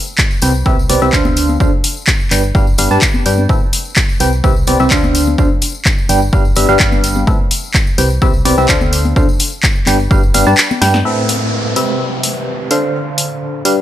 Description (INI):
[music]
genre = piano house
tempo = 127 BPM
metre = 4/4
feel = straight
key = unclear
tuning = A4 = 435 Hz
[part]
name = tambourine and congas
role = percussion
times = 0.1-11.0 s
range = none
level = -23 LUFS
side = left 4 dB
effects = none
[part]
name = electronic kick drum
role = drums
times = 0.2-10.2 s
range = none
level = -14 LUFS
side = equal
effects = none
[part]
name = punchy analog drum machine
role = drums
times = 0.2-13.8 s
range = handclaps, hi-hat, snare drum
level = -16 LUFS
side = left 1 dB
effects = none
[part]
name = barking FM electric piano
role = riff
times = 0.4-13.8 s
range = A2 to A5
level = -15 LUFS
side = equal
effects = chorus, phaser, tremolo, sidechain pumping, digital delay
[part]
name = solid FM bass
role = bass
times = 0.4-11.0 s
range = G1 to G2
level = -16 LUFS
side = equal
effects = sidechain pumping
[part]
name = downlifter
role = sound effects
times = 11.1-13.8 s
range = none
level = -22 LUFS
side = right 2 dB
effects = none
[sound]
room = light reverb, digital ambience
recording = none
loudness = -11 LUFS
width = side -12 dB against mid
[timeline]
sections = 0.0-11.1 A section; 11.1-13.8 B section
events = kick drops out 10.6-11.1; drum fill 10.8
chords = 0.4 Cmaj7; 1.4 Dm7; 2.3 G7; 3.5 Amadd9; 4.2 Cmaj7; 5.1 Dm7; 6.1 G7; 7.3 Amadd9; 8.0 Cmaj7; 8.9 Dm7; 9.9 G7; 11.1 Amadd9; 11.8 Cmaj7; 12.7 Dm7